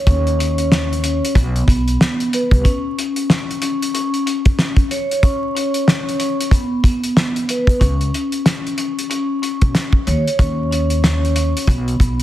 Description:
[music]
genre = hip hop, boom-bap hip-hop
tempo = 93 BPM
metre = 4/4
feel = swing 60% on 16ths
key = unclear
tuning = A4 = 440 Hz
[part]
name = vibraphone with soft mallets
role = accompaniment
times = 0.0-12.2 s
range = B3 to C#5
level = -20 LUFS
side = left 1 dB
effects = high-pass filter, low-pass filter
[part]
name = upright bass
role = bass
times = 0.1-2.6, 7.8-12.2 s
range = B1 to D#2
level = -18 LUFS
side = equal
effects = none
[part]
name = cloth-damped thuddy drum kit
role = drums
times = 0.1-12.2 s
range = hi-hat, kick drum, snare drum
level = -16 LUFS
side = equal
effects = none
[sound]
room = studio reverb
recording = dense, heavily limited modern master, vinyl crackle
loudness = -15 LUFS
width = side -13 dB against mid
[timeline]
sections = 0.0-7.8 A section; 7.8-12.2 B section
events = none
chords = 0.0 C#sus2/D#; 1.4 N.C.; 10.1 C#sus2/D#; 11.7 N.C.

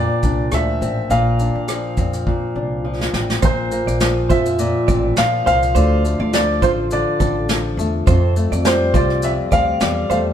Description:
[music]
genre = acoustic pop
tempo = 103 BPM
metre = 4/4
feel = swing 55% on 16ths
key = unclear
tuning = A4 = 440 Hz
[part]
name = warm upright piano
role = melody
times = 0.0-10.2 s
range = C5 to F5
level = -21 LUFS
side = equal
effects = none
[part]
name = flamenco guitar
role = accompaniment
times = 0.0-10.3 s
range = F2 to F4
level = -20 LUFS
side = left 2 dB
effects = none
[part]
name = upright bass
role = bass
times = 0.0-10.3 s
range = A1 to F2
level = -21 LUFS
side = equal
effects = none
[part]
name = soft brush drum kit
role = drums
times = 0.2-10.3 s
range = kick drum, rim click, shaker, snare drum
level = -20 LUFS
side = equal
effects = none
[part]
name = direct-recorded clean electric guitar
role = arpeggios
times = 3.4-10.2 s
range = A4 to D5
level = -25 LUFS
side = right 8 dB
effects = spring reverb
[sound]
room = light reverb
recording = band playing live in one room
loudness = -15 LUFS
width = side -9 dB against mid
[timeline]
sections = 0.0-3.4 A section; 3.4-10.3 B section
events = drum fill 2.3-3.4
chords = 0.0 Bbadd9; 5.8 Dm7; 8.1 Fadd9

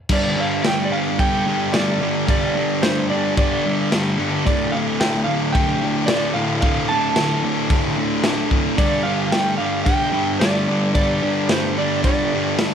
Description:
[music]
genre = garage rock duo or trio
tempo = 110 BPM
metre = 4/4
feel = straight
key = unclear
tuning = A4 = 441 Hz
[part]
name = electric slide guitar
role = melody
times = 0.1-12.6 s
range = C5 to A5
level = -23 LUFS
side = right 2 dB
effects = none
[part]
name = thick fuzz guitar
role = riff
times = 0.1-12.7 s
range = D2 to G3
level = -20 LUFS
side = equal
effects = distortion
[part]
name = crunchy breakbeat drum kit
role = drums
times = 0.1-12.7 s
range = crash cymbal, kick drum, snare drum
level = -22 LUFS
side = equal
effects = none
[sound]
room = moderate studio reverb, RT60 0.5 s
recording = none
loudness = -17 LUFS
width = side -8 dB against mid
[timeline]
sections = 0.1-12.7 A section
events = none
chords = 0.1 G5; 4.5 D5; 8.8 G5

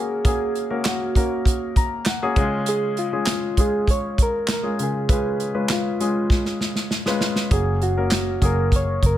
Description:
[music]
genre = piano-driven pop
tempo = 99 BPM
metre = 4/4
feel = straight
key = F# major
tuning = A4 = 440 Hz
[part]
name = soft struck synth lead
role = melody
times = 0.0-9.2 s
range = E#4 to C#5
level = -25 LUFS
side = right 1 dB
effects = chorus, plate reverb
[part]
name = warm grand piano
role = accompaniment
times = 0.0-9.2 s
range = C#3 to A#5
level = -25 LUFS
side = left 2 dB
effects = plate reverb
[part]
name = natural country drum kit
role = drums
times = 0.2-9.2 s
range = handclaps, hi-hat, kick drum, snare drum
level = -21 LUFS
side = equal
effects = none
[part]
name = vintage muted picked electric bass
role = bass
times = 7.5-9.2 s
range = F#1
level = -22 LUFS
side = equal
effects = none
[sound]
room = light reverb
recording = none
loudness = -19 LUFS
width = side -12 dB against mid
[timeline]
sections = 0.0-9.2 A section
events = grand piano fill 1.5-2.7; drum fill 6.3-7.5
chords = 0.0 F#add9; 2.4 C#; 7.5 F#add9

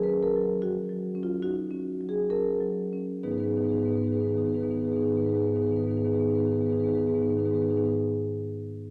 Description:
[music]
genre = classical, contemporary piece for solo marimba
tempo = 63-77 BPM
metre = 5/4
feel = rubato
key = G# minor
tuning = A4 = 440 Hz
[part]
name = marimba with medium mallets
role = solo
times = 0.0-7.9 s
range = G#2 to B4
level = -27 LUFS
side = equal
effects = none
[sound]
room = wet recital hall reverb, RT60 1.5 s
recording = none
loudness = -27 LUFS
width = mono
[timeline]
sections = 0.0-3.2 A section; 3.2-7.7 B section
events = slowing down 0.0-3.2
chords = 0.0 D#m9; 3.2 G#m

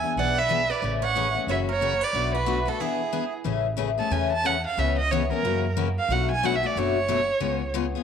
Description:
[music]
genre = acoustic string swing (jazz manouche)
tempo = 182 BPM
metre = 4/4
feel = swing 60% on 8ths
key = A major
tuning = A4 = 439 Hz
[part]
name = warm violin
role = melody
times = 0.0-7.8 s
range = G#4 to A5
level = -26 LUFS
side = right 3 dB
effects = none
[part]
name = picked swing-style acoustic guitar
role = second line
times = 0.0-3.3 s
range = E4 to D5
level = -32 LUFS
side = right 9 dB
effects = none
[part]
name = picked steel-string acoustic guitar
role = accompaniment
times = 0.0-8.0 s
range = B2 to G#4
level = -27 LUFS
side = left 10 dB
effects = none
[part]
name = upright bass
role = bass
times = 0.0-7.9 s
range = F#1 to F#2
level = -29 LUFS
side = right 2 dB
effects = none
[sound]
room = wet spring reverb, RT60 1.7 s, small room ambience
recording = 1960s-style stereo with parts hard left and right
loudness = -22 LUFS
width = side -7 dB against mid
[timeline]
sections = 0.0-3.5 A section; 3.5-8.0 B section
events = break 2.8-3.5; violin solo 3.5-8.0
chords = 0.0 E7; 0.8 Amaj7; 1.5 F#7; 2.1 Bm7; 2.8 E7; 3.5 Amaj7; 4.8 C#m7; 5.4 F#7; 6.1 Bm7; 7.4 C#7

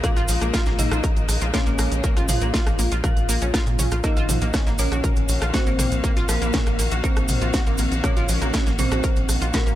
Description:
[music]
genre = melodic techno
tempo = 120 BPM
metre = 4/4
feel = straight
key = unclear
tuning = A4 = 440 Hz
[part]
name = wide unison lead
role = melody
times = 0.0-9.8 s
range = Bb3 to F4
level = -30 LUFS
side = equal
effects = analog chorus, sidechain pumping, dub echo
[part]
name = dark detuned synth bell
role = second line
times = 0.0-9.8 s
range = Bb4 to F5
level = -33 LUFS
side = right 1 dB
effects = chorus, tremolo, sidechain pumping, tape echo
[part]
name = rich chamber string section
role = sustained chords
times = 0.0-9.8 s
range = Db3 to F5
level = -32 LUFS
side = left 3 dB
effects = sidechain pumping
[part]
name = analog pluck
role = arpeggios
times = 0.0-9.8 s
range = F3 to Bb4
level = -30 LUFS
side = equal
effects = chorus, cassette tape, sidechain pumping, tape echo
[part]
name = electronic kick drum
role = drums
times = 0.0-9.6 s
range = none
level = -22 LUFS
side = equal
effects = distortion
[part]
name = techno drum kit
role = drums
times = 0.0-9.8 s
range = hi-hat, rim click, snare drum, toms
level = -27 LUFS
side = equal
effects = none
[part]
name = cabasa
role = percussion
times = 0.0-9.8 s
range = none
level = -32 LUFS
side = right 3 dB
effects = none
[part]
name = tight sequencer bass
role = bass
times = 0.2-9.8 s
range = Bb1 to Bb2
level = -24 LUFS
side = equal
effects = tube saturation, sidechain pumping
[sound]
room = digital ambience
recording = none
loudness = -19 LUFS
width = side -13 dB against mid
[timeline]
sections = 0.0-9.8 A section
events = none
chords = 0.0 Bbm7; 4.0 Ebm7/Bb

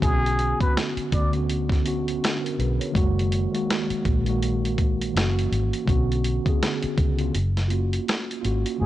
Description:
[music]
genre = lo-fi hip hop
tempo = 82 BPM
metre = 4/4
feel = swing 59% on 16ths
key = F# major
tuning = A4 = 440 Hz
[part]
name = trumpet with plunger mute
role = melody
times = 0.0-1.3, 8.8-8.9 s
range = G#4 to D5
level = -27 LUFS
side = left 1 dB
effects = none
[part]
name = mellow tine electric piano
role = accompaniment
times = 0.0-8.9 s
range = D3 to C#5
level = -26 LUFS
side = right 1 dB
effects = medium stereo tremolo
[part]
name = vintage muted fingered electric bass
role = bass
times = 0.0-8.9 s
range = F#1 to D2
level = -24 LUFS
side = equal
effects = transformer saturation
[part]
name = dusty soul sampler-style drum kit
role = drums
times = 0.0-8.8 s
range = finger snaps, hi-hat, kick drum, snare drum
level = -25 LUFS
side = equal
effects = none
[sound]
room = little or no reverb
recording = dry, gritty hardware recording, cassette tape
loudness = -21 LUFS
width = side -14 dB against mid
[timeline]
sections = 0.0-8.8 A section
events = break 7.3-8.8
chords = 0.0 Bmadd9; 2.9 F#69; 5.1 F#7; 5.9 Bmadd9; 7.3 F#maj7

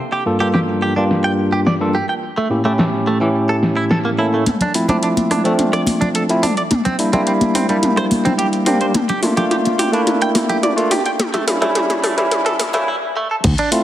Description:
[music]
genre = nu-disco, nu disco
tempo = 107 BPM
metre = 4/4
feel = straight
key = D minor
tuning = A4 = 440 Hz
[part]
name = direct-recorded clean electric guitar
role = riff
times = 0.1-13.7 s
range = E3 to G5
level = -21 LUFS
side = right 2 dB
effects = lush chorus, low-pass filter, tape echo
[part]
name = barky tine electric piano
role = accompaniment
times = 0.3-13.8 s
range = G2 to A4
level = -17 LUFS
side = equal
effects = tape echo
[part]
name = pop drum kit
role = drums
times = 0.5-13.8 s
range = crash cymbal, hi-hat, rim click, snare drum, toms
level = -20 LUFS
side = left 1 dB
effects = low-pass filter on snare, studio reverb, low-pass filter on hats, low-pass filter on toms, low-pass filter on cymbals
[part]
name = congas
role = percussion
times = 4.5-12.8 s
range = none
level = -21 LUFS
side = left 1 dB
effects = none
[part]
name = picked electric bass with an envelope filter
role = bass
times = 13.4-13.5 s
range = D2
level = -15 LUFS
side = equal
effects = none
[part]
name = electronic kick drum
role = drums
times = 13.4-13.6 s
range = none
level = -19 LUFS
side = equal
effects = studio reverb
[sound]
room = wet lush hall reverb, RT60 1.5 s, digital ambience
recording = heavily compressed radio sound, multiband compression, high-pass filter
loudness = -14 LUFS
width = side -12 dB against mid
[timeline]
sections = 0.0-4.5 A section; 4.5-13.4 B section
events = build-up 4.5-13.4; drum fill 4.5-12.9; break 12.9-13.4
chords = 0.0 Gm7; 2.2 A7b9; 4.5 Dm7; 6.7 C9; 9.0 Gm7; 11.2 A7

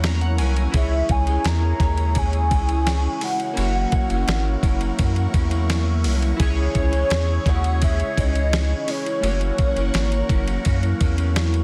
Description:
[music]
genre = indie pop, bedroom pop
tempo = 85 BPM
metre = 4/4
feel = straight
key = C# dorian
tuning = A4 = 440 Hz
[part]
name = hollow clarinet-like synth lead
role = melody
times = 0.0-11.3 s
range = C#5 to A#5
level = -29 LUFS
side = equal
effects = ensemble chorus, tape echo
[part]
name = chorused retro synth keys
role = accompaniment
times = 0.0-11.6 s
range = A3 to A#5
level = -34 LUFS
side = equal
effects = cassette tape
[part]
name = electric guitar through a small old amp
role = accompaniment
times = 0.0-11.6 s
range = F#2 to C#4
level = -32 LUFS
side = equal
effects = ensemble chorus, warbly pitch drift
[part]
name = phased analog pad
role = sustained chords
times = 0.0-11.6 s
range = E4 to C#6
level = -34 LUFS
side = equal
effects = phaser, chorus
[part]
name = round analog bass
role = bass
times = 0.0-11.6 s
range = F#1 to F#2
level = -23 LUFS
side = equal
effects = none
[part]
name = dusty soul sampler-style drum kit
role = drums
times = 0.0-11.6 s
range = hi-hat, kick drum, ride cymbal, snare drum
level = -26 LUFS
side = equal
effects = none
[sound]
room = light reverb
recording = dense, heavily limited modern master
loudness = -21 LUFS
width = mono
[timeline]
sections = 0.0-11.6 A section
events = synth keys fill 0.0-0.7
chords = 0.0 F#7; 0.7 C#m; 3.6 F#7; 6.4 C#m; 9.2 F#7

